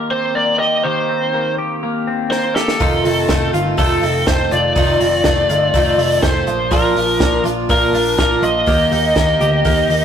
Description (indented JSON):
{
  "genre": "jangly indie pop",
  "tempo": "123 BPM",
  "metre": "4/4",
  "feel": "straight",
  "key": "unclear",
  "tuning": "A4 = 440 Hz",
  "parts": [
    { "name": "twelve-string electric guitar", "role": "arpeggios", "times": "0.0-10.0 s", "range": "Eb3 to G4", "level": "-21 LUFS", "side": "left 3 dB", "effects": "phaser" },
    { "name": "biting lead guitar", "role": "melody", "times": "0.1-10.0 s", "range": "A4 to Eb5", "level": "-17 LUFS", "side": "equal", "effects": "overdrive" },
    { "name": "compact cocktail drum kit", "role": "drums", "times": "2.3-10.0 s", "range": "hi-hat, kick drum, snare drum", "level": "-20 LUFS", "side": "equal", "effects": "none" },
    { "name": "picked twelve-string acoustic guitar", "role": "accompaniment", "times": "2.8-10.0 s", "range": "F2 to G4", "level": "-20 LUFS", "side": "right 4 dB", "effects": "none" },
    { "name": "vintage muted picked electric bass", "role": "bass", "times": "2.8-10.0 s", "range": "F1 to Eb2", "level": "-22 LUFS", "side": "equal", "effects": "none" }
  ],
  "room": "moderate stone room reverb, RT60 1.1 s",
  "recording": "rough rehearsal-room recording, tube saturation",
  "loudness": "-13 LUFS",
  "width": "side -8 dB against mid",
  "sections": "0.0-10.0 A section",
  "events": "drum fill 2.3-2.8",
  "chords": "0.0 Cm7; 2.8 F7; 6.5 Bb; 8.7 Eb"
}